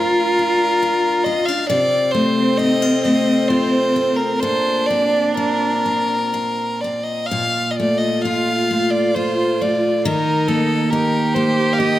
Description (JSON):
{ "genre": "celtic folk, Celtic slow air", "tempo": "60-70 BPM", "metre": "3/4", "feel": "rubato", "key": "unclear", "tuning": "A4 = 440 Hz", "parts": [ { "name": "clear fiddle", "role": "melody", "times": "0.0-12.0 s", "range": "A4 to F5", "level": "-19 LUFS", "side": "equal", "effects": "none" }, { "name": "warm cello", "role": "second line", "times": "0.0-12.0 s", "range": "C4 to G4", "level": "-20 LUFS", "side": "equal", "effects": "none" }, { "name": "picked steel-string acoustic guitar", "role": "accompaniment", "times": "0.0-12.0 s", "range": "D2 to F4", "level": "-21 LUFS", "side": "left 1 dB", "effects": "none" } ], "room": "moderate scoring stage reverb, RT60 1.6 s", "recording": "none", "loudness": "-16 LUFS", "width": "side -14 dB against mid", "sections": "0.0-12.0 A section", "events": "none", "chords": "0.0 Bb/D; 1.7 F/C; 4.4 Bbadd9; 10.1 Eb", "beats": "0.83 | 1.70 2.59 3.49 | 4.42 5.37 6.34 | 7.31 8.25 9.17 | 10.07 10.94 11.81" }